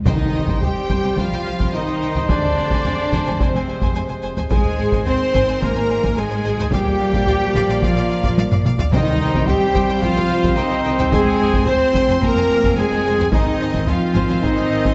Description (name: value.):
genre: cinematic, epic orchestral film score.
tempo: 108 BPM.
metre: 4/4.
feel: straight.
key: C minor.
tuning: A4 = 440 Hz.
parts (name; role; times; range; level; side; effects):
clear symphonic violin section; melody; 0.1-14.9 s; C5 to C6; -34 LUFS; equal; none.
rich studio violin section; second line; 0.1-14.9 s; C5 to Ab5; -34 LUFS; equal; none.
warm symphonic viola section; accompaniment; 0.1-14.9 s; C4 to C5; -30 LUFS; equal; none.
clear trombone section; sustained chords; 0.1-14.9 s; C3 to C4; -29 LUFS; equal; none.
mellow French horn section; sustained chords; 0.1-14.9 s; C4 to C5; -24 LUFS; equal; none.
mellow trumpet; stabs; 0.1-14.9 s; C5 to D5; -30 LUFS; equal; none.
rich symphonic cello section; bass; 0.1-14.9 s; C3 to C4; -26 LUFS; equal; none.
rich symphonic double bass section; bass; 0.1-14.9 s; F1 to C2; -28 LUFS; equal; none.
taiko ensemble; drums; 0.1-14.9 s; none; -24 LUFS; equal; none.
timpani; percussion; 0.1-0.9, 8.9-9.7 s; C3; -26 LUFS; equal; none.
impact; sound effects; 0.1-2.3 s; none; -33 LUFS; equal; none.
room: wet scoring stage reverb, RT60 1.5 s.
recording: nothing above 7.9 kHz.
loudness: -18 LUFS.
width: mono.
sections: 0.1-14.9 A section.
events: impact 0.1-2.3; drum fill 8.4-8.9.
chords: 0.1 Cm; 2.3 Fm; 4.5 Ab; 6.7 Bb; 8.9 Cm; 11.1 Fm; 13.3 Ab.